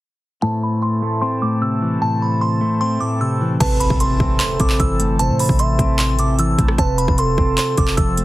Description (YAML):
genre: hip hop, trap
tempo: 151 BPM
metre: 4/4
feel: half-time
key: A minor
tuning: A4 = 441 Hz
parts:
  - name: delicate synth tine bell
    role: melody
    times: 0.4-8.1 s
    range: A5 to E6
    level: -23 LUFS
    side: right 1 dB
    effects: chorus, low-pass filter, tape echo
  - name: clean electric guitar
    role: accompaniment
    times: 0.4-8.2 s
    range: A2 to C5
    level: -20 LUFS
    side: left 1 dB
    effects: low-pass filter
  - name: mellow accordion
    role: sustained chords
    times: 0.4-8.2 s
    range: E3 to A4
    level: -30 LUFS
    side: equal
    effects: low-pass filter
  - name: gliding portamento lead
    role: second line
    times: 3.6-8.2 s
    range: A4 to E5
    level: -25 LUFS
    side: right 5 dB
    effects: chorus, tape echo
  - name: clean 808-style bass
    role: bass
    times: 3.6-8.2 s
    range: F1 to A2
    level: -20 LUFS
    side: equal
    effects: none
  - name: trap drum kit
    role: drums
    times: 3.6-8.2 s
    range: crash cymbal, handclaps, hi-hat, kick drum, rim click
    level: -19 LUFS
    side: equal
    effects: overdrive
  - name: impact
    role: sound effects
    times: 3.6-5.2 s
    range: none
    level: -30 LUFS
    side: equal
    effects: none
room: little or no reverb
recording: heavily compressed radio sound, multiband compression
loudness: -15 LUFS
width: side -16 dB against mid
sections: 0.4-3.6 A section; 3.6-8.2 B section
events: filter sweep 0.4-3.6; impact 3.6-5.2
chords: 0.4 Am; 6.8 F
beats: | 0.43 0.82 1.22 1.62 | 2.02 2.41 2.81 3.21 | 3.60 4.00 4.40 4.80 | 5.19 5.59 5.99 6.39 | 6.78 7.18 7.58 7.98